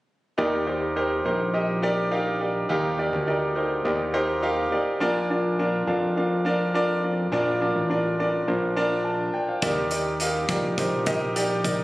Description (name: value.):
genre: piano-driven pop.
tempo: 104 BPM.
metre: 4/4.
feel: straight.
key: unclear.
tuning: A4 = 444 Hz.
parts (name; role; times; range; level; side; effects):
clear concert grand piano; accompaniment; 0.4-11.8 s; Bb2 to A5; -23 LUFS; equal; none.
fat analog bass; bass; 0.4-11.8 s; A1 to F2; -29 LUFS; equal; none.
modern studio drum kit; drums; 9.6-11.8 s; hi-hat, kick drum; -30 LUFS; equal; none.
room: light reverb.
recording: recorded on a phone in the room, studio reverb.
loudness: -22 LUFS.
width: side -18 dB against mid.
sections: 0.4-11.8 A section.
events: none.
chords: 0.4 Ebmaj7; 5.0 Bb; 9.6 Ebmaj7.